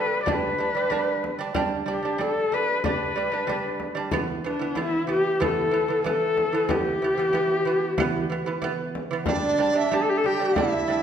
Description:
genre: mongolian traditional, Mongolian folk.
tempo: 93 BPM.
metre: 4/4.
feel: straight.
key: G gong mode.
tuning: A4 = 440 Hz.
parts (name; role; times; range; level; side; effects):
warm horsehead fiddle; melody; 0.0-11.0 s; D4 to D5; -24 LUFS; left 2 dB; none.
lute; arpeggios; 0.0-11.0 s; E3 to D4; -27 LUFS; right 5 dB; none.
frame drum; percussion; 0.3-10.7 s; none; -32 LUFS; left 3 dB; none.
mellow hollow dizi; second line; 9.3-11.0 s; D5 to G5; -26 LUFS; right 5 dB; none.
room: wet recital hall reverb, RT60 1.4 s.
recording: none.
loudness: -22 LUFS.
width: side -8 dB against mid.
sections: 0.0-9.3 A section; 9.3-11.0 B section.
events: none.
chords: 0.0 G5; 4.1 E5; 9.3 G5.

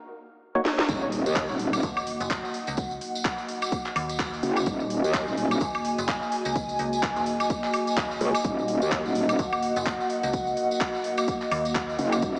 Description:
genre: bass house.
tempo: 127 BPM.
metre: 4/4.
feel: swing 58% on 16ths.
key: Eb minor.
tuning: A4 = 440 Hz.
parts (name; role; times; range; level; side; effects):
percussive organ stab; stabs; 0.6 s; Bb3 to Db5; -30 LUFS; equal; chorus, sidechain pumping, diffuse ambient delay.
garage drum kit; drums; 0.7-12.3 s; handclaps, hi-hat, snare drum, woodblock; -30 LUFS; equal; none.
dark analog pad; sustained chords; 1.5-12.4 s; Bb3 to Bb5; -28 LUFS; equal; chorus, sidechain pumping.
metallic wobble bass; bass; 0.9-12.4 s; Eb1 to Eb2; -25 LUFS; equal; chorus, overdrive, sidechain pumping.
electronic kick drum; drums; 0.9-12.3 s; none; -30 LUFS; equal; none.
tambourine; percussion; 0.9-12.4 s; none; -38 LUFS; equal; none.
impact; sound effects; 0.9-2.8 s; none; -44 LUFS; equal; none.
metallic FM bass; bass; 1.8-12.0 s; Eb1 to Eb2; -35 LUFS; equal; overdrive, sidechain pumping.
room: wet lush hall reverb, RT60 2.5 s.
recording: dreamy mix soaked in reverb, small speaker sound.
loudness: -24 LUFS.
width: side -36 dB against mid.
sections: 0.9-12.4 A section.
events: break 0.0-0.9; drum fill 0.7; drop 0.9-12.4; impact 0.9-2.8.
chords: 0.0 Ebm.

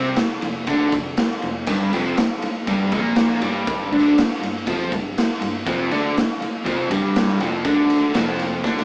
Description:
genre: garage rock duo or trio.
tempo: 121 BPM.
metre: 4/4.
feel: straight.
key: unclear.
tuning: A4 = 440 Hz.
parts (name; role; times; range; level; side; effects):
crunchy overdriven guitar; riff; 0.0-8.8 s; F2 to F4; -23 LUFS; equal; none.
growling fingered electric bass; bass; 0.0-8.8 s; F1 to F2; -34 LUFS; equal; overdrive, tube saturation.
raw garage drum kit; drums; 0.2-8.8 s; crash cymbal, kick drum, ride cymbal, snare drum; -25 LUFS; equal; none.
room: moderate large studio reverb, RT60 0.8 s.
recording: band playing live in one room, cassette tape, small speaker sound.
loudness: -21 LUFS.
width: mono.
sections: 0.0-8.8 A section.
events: drum fill 8.6.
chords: 0.0 F5; 1.7 G5; 5.7 Dmadd11/F.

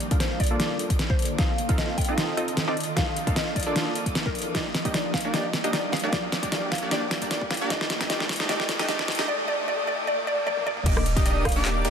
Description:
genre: future bass.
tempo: 152 BPM.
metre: 4/4.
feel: swing 54% on 16ths, half-time.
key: Bb major.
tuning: A4 = 440 Hz.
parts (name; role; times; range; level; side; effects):
mallet-like synth pluck; melody; 0.0-11.7 s; Bb4 to G5; -31 LUFS; left 1 dB; ensemble chorus, sidechain pumping, ping-pong delay.
ethereal airy pad; sustained chords; 0.0-9.3 s; D3 to A4; -38 LUFS; right 1 dB; none.
warm 808-style bass; bass; 0.0-11.9 s; Eb1 to Bb1; -32 LUFS; equal; sidechain pumping, high-pass filter.
dubstep drum kit; drums; 0.0-11.9 s; crash cymbal, handclaps, hi-hat, rim click, snare drum, toms; -28 LUFS; equal; overdrive.
riser; sound effects; 0.1-10.9 s; none; -39 LUFS; right 1 dB; none.
supersaw stab; riff; 0.1-11.9 s; A3 to F5; -29 LUFS; right 1 dB; sidechain pumping, low-pass filter.
electronic kick drum; drums; 0.1-8.4, 10.9-11.5 s; none; -26 LUFS; equal; none.
airy dreamy lead; arpeggios; 10.9-11.9 s; D6 to Eb6; -32 LUFS; left 1 dB; chorus, sidechain pumping.
room: moderate shimmer reverb, RT60 5.7 s.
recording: dense, heavily limited modern master, high-pass filter.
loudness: -23 LUFS.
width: side -7 dB against mid.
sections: 0.0-10.9 A section; 10.9-11.9 B section.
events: build-up 0.0-10.9; drum fill 0.0-9.3, 10.5-10.9; filter sweep on supersaw synth 0.0-10.9; filter sweep 0.0-10.9; drop 10.9-11.9.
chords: 0.0 Bbmaj7; 1.4 F7; 3.0 Bbmaj7; 4.5 Ebmaj7; 6.1 Bbmaj7; 7.7 F7; 9.3 N.C.; 10.9 Ebmaj7.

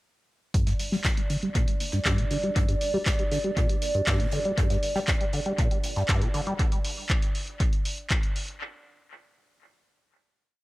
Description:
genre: acid house.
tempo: 119 BPM.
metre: 4/4.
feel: straight.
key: G minor.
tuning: A4 = 440 Hz.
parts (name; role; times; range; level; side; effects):
dark analog pad; sustained chords; 0.8-8.6 s; D5; -33 LUFS; right 2 dB; chorus, vintage 12-bit sampler grit, sidechain pumping.
deep acid bass; riff; 0.5-6.5 s; G2 to G3; -29 LUFS; equal; tube saturation, analog chorus, sidechain pumping, tape echo.
electronic kick drum; drums; 0.5-8.2 s; none; -26 LUFS; equal; none.
jazz brush drum kit; drums; 0.5-6.5 s; hi-hat, snare drum; -41 LUFS; right 2 dB; sidechain pumping on hats, high-pass filter on hats, high-pass filter on snare, high-pass filter on room, analog delay.
punchy analog drum machine; drums; 0.5-8.6 s; handclaps, hi-hat; -32 LUFS; equal; analog delay.
room: light reverb, small room ambience.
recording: echo-heavy mix.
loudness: -24 LUFS.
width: side -19 dB against mid.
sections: 0.5-8.6 groove.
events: filter sweep on acid bass 0.5-6.6.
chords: 0.5 G5.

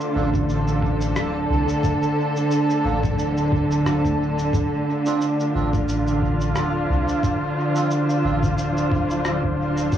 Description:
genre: ambient dub.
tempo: 89 BPM.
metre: 4/4.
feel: swing 56% on 16ths.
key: D minor.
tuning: A4 = 441 Hz.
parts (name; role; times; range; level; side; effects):
muted studio string section; sustained chords; 0.0-10.0 s; D3 to C5; -21 LUFS; right 1 dB; cassette tape, plate reverb.
electronic shaker and rim click; drums; 0.0-10.0 s; none; -33 LUFS; left 1 dB; cassette tape, dub echo.
backwards swelling texture; texture; 0.0-10.0 s; F3 to A4; -32 LUFS; left 1 dB; built-in reverb, cassette tape, plate reverb.
melodica; stabs; 0.1-8.4 s; Bb3 to A4; -32 LUFS; right 8 dB; cassette tape, dub echo, plate reverb.
soft dub sub bass; bass; 0.2-10.0 s; D1 to C2; -25 LUFS; equal; none.
electronic kick drum; drums; 0.3-10.0 s; none; -25 LUFS; equal; cassette tape.
room: moderate studio reverb, RT60 0.6 s.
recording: home recording on cassette, small room reverb.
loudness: -19 LUFS.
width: side -10 dB against mid.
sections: 0.0-10.0 A section.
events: none.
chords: 0.0 Bbmaj7/D (rootless); 4.5 Dm7.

